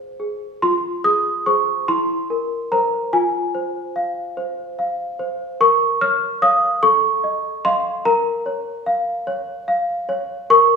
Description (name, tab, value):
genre	classical, lullaby for celesta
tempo	49 BPM (dotted quarters)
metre	6/8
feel	straight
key	F minor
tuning	A4 = 439 Hz
part	worn celesta	solo	0.0-10.8 s	E4 to F6	-17 LUFS	equal	none
room	wet recital hall reverb, RT60 1.3 s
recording	recorded in a church or concert hall, studio reverb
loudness	-17 LUFS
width	side -5 dB against mid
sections	0.6-10.8 A section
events	none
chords	0.0 Fm; 1.9 C7/E; 3.1 Fm; 5.6 Bbm; 6.8 F7/A; 8.1 Bbm